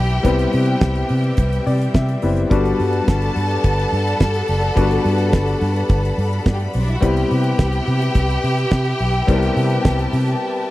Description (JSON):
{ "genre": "disco", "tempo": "106 BPM", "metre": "4/4", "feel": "straight", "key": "unclear", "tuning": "A4 = 439 Hz", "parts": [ { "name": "clear studio string section", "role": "second line", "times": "0.0-10.7 s", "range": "G3 to A5", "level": "-24 LUFS", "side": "equal", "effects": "none" }, { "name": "clear baby grand piano", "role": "accompaniment", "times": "0.0-10.7 s", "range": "G3 to E5", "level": "-22 LUFS", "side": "left 3 dB", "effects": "none" }, { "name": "clear studio string section", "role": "sustained chords", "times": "0.0-10.7 s", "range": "G3 to B5", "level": "-28 LUFS", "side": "equal", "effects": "none" }, { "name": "vintage muted fingered electric bass", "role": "bass", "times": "0.0-10.3 s", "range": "F#1 to C3", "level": "-19 LUFS", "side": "equal", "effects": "none" }, { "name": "damped 70s drum kit", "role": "drums", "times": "0.1-10.4 s", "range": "hi-hat, kick drum, snare drum", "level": "-16 LUFS", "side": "equal", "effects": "none" } ], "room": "small room ambience", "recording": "dry, close 1970s-style studio recording", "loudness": "-16 LUFS", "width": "side -16 dB against mid", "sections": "0.0-10.7 A section", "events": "grand piano fill 1.4-2.5; break 10.4", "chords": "0.0 Cmaj7; 2.5 Gmaj7; 7.0 Cmaj7", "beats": "| 0.24 0.81 1.38 1.94 | 2.50 3.07 3.63 4.20 | 4.76 5.33 5.89 6.46 | 7.02 7.59 8.15 8.72 | 9.28 9.85 10.41" }